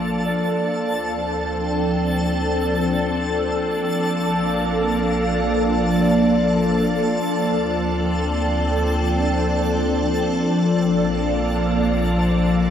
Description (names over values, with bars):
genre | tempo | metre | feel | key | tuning
ambient | 73 BPM | 4/4 | straight | Bb major | A4 = 440 Hz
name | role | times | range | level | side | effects
soft additive organ-like pad | sustained chords | 0.0-12.7 s | F3 to D5 | -19 LUFS | equal | ensemble chorus, built-in reverb, phaser, shimmer reverb
Celtic harp | arpeggios | 0.0-12.7 s | C5 to F5 | -31 LUFS | left 2 dB | tape echo, shimmer reverb
warm sub bass | bass | 0.0-12.7 s | Bb1 to D2 | -27 LUFS | equal | none
analog drone | drone | 0.0-12.7 s | Bb3 to F4 | -32 LUFS | equal | chorus
twinkling granular texture | texture | 0.0-12.7 s | A5 | -30 LUFS | right 1 dB | built-in reverb, shimmer reverb
room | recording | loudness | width
wet huge ambient reverb, RT60 8.3 s | in a vast, echoing space | -18 LUFS | side -9 dB against mid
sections
0.0-12.7 A section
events
fade-in on sub bass 0.0-12.7; fade-in on synth drone 0.0-12.7; fade-out on synth texture 0.0-12.7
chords
0.0 Bbmaj7; 0.7 Dm7; 4.0 Bbmaj7; 7.2 Dm7; 10.5 Bbmaj7